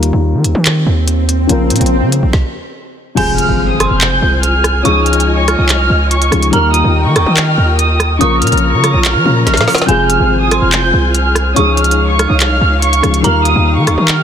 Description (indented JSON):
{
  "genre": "hip hop, drill",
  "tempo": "143 BPM",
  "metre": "4/4",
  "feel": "half-time",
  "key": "F minor",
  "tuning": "A4 = 440 Hz",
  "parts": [
    { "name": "dark baby grand piano", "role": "accompaniment", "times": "0.0-14.2 s", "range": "C3 to Bb4", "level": "-18 LUFS", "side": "left 6 dB", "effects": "low-pass filter" },
    { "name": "hard-hitting 808-style bass", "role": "bass", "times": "0.0-14.2 s", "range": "F1 to F3", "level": "-14 LUFS", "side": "right 1 dB", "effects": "none" },
    { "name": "drill drum kit", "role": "drums", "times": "0.0-14.2 s", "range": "crash cymbal, handclaps, hi-hat, kick drum, rim click, snare drum", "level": "-17 LUFS", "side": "equal", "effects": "none" },
    { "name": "swell and impact", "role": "sound effects", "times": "0.5-4.9 s", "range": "none", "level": "-21 LUFS", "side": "right 1 dB", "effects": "none" },
    { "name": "dark studio violin section", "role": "melody", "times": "3.2-14.2 s", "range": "Db6 to G6", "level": "-16 LUFS", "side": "right 1 dB", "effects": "low-pass filter, tape echo" },
    { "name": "dark detuned synth bell", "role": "second line", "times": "3.2-14.1 s", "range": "Ab5 to F6", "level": "-20 LUFS", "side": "right 3 dB", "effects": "chorus, tape echo" },
    { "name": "dark symphonic string section", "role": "sustained chords", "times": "3.2-14.2 s", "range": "Eb4 to Bb5", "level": "-20 LUFS", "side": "left 1 dB", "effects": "none" }
  ],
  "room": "light reverb, digital ambience",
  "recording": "dense, heavily limited modern master",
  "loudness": "-9 LUFS",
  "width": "side -8 dB against mid",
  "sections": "0.0-3.2 A section; 3.2-14.2 B section",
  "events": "break 0.0-3.2; swell 0.5-3.2; stop 2.3-3.2; impact 3.2-4.9; drum fill 9.5-9.9",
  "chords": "0.0 Ebadd9; 1.5 Bbm; 3.2 Fm; 4.9 Dbadd9; 6.5 Ebadd9; 8.2 Bbm; 9.9 Fm; 11.6 Dbadd9; 13.2 Ebadd9",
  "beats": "0.23 0.66 1.07 | 1.49 1.91 2.33 2.75 | 3.17 3.59 4.01 4.43 | 4.85 5.27 5.69 6.11 | 6.53 6.95 7.37 7.79 | 8.21 8.63 9.05 9.47 | 9.89 10.30 10.72 11.14 | 11.56 11.98 12.40 12.82 | 13.24 13.66 14.08"
}